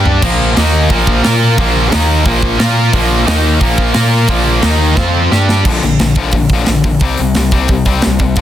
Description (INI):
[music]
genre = punk rock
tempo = 177 BPM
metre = 4/4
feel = straight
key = Bb major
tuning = A4 = 438 Hz
[part]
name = tight distorted guitar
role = riff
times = 0.0-8.4 s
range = Bb2 to Bb4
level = -14 LUFS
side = left 7 dB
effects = distortion
[part]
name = tight distorted guitar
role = riff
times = 0.0-5.7 s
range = Bb2 to Bb4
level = -16 LUFS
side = right 12 dB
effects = distortion
[part]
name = gritty driven synth bass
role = bass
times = 0.0-8.4 s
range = Bb1 to Bb2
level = -14 LUFS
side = equal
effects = none
[part]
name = tight metal drum kit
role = drums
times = 0.1-8.4 s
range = crash cymbal, hi-hat, kick drum, snare drum, splash cymbal, toms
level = -16 LUFS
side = right 1 dB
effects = none
[sound]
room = light reverb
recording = dense, heavily limited modern master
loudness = -9 LUFS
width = side -11 dB against mid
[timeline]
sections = 0.0-5.7 A section; 5.7-8.4 B section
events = drum fill 0.0, 5.0-5.7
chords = 0.2 Bb5; 0.6 Eb5; 0.9 Bb5; 1.9 Eb5; 2.3 Bb5; 3.3 Eb5; 3.6 Bb5; 4.6 Eb5; 5.0 F5; 5.3 G5; 5.7 Bb; 7.0 C5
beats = | 0.23 0.57 0.91 1.25 | 1.59 1.93 2.27 2.61 | 2.94 3.28 3.62 3.96 | 4.30 4.64 4.98 5.32 | 5.66 6.00 6.34 6.68 | 7.02 7.36 7.70 8.04 | 8.38